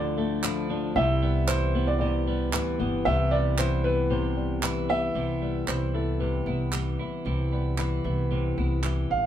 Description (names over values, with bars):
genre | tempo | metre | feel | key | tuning
acoustic pop | 114 BPM | 4/4 | swing 55% on 16ths | C major | A4 = 442 Hz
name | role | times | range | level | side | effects
dark upright piano | melody | 0.0-9.3 s | A4 to F5 | -29 LUFS | right 2 dB | plate reverb
flamenco guitar | accompaniment | 0.0-9.3 s | C3 to E4 | -30 LUFS | left 5 dB | none
twelve-string electric guitar | arpeggios | 0.0-9.3 s | F3 to E4 | -34 LUFS | right 6 dB | none
upright bass | bass | 0.0-9.3 s | G1 to D2 | -28 LUFS | equal | none
group handclap | percussion | 0.4-9.0 s | none | -31 LUFS | right 5 dB | none
room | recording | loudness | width
wet small room reverb, RT60 0.5 s | heard from further back in the room | -24 LUFS | side -10 dB against mid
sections
0.0-5.2 A section; 5.2-9.3 B section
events
none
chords
0.0 Dmadd9; 1.0 Cmaj7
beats
0.44 | 0.96 1.49 2.01 2.53 | 3.06 3.58 4.11 4.63 | 5.15 5.68 6.21 6.73 | 7.26 7.78 8.31 8.84